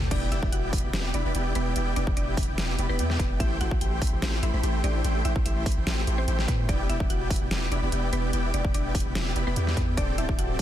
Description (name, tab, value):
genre	future bass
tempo	146 BPM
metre	4/4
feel	half-time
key	E minor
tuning	A4 = 440 Hz
part	mallet-like synth pluck	melody	0.0-10.6 s	B3 to G5	-35 LUFS	left 1 dB	chorus, sidechain pumping, tape echo
part	dense compressed supersaw	riff	0.0-10.6 s	A3 to B5	-31 LUFS	equal	sidechain pumping
part	long sustained 808-style bass	bass	0.0-10.6 s	D1 to A2	-28 LUFS	equal	sidechain pumping
part	dubstep drum kit	drums	0.0-10.6 s	crash cymbal, hi-hat, snare drum, toms	-33 LUFS	equal	overdrive
part	electronic kick drum	drums	0.1-10.6 s	none	-27 LUFS	equal	overdrive
room	digital ambience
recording	dense, heavily limited modern master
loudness	-24 LUFS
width	side -11 dB against mid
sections	0.0-10.6 A section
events	none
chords	0.1 Em7; 3.4 Am7; 6.7 Em7; 10.0 D7sus4